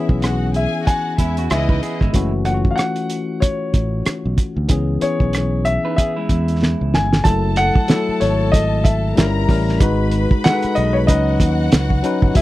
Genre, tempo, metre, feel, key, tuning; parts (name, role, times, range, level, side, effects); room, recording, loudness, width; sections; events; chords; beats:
lush 1970s-style soul; 94 BPM; 4/4; swing 58% on 16ths; F# dorian; A4 = 440 Hz
warm studio string section; second line; 0.0-2.0, 7.3-12.4 s; E4 to B5; -27 LUFS; left 2 dB
bright tine electric piano; accompaniment; 0.0-12.4 s; E3 to B4; -22 LUFS; left 3 dB
fingered electric bass; bass; 0.1-12.4 s; F#1 to E2; -20 LUFS; right 1 dB
cloth-damped thuddy drum kit; drums; 0.1-12.4 s; hi-hat, kick drum, rim click, snare drum; -16 LUFS; right 1 dB
warm grand piano; melody; 0.6-12.4 s; C#5 to A5; -22 LUFS; left 1 dB
electric guitar through a small old amp; riff; 1.2-7.1 s; G#3 to B4; -26 LUFS; right 5 dB
little or no reverb; dry, close 1970s-style studio recording; -15 LUFS; side -16 dB against mid
0.0-7.3 A section; 7.3-12.4 B section
drum fill 6.6-7.3
0.0 C#m7; 2.1 F#m7; 4.7 C#m7; 7.3 F#m9; 9.2 Gdim7; 9.8 G#m7; 11.1 C#9sus4
0.23 0.87 1.50 | 2.14 2.78 3.42 4.06 | 4.70 5.34 5.97 6.61 | 7.25 7.89 8.53 9.16 | 9.80 10.44 11.08 11.71 | 12.35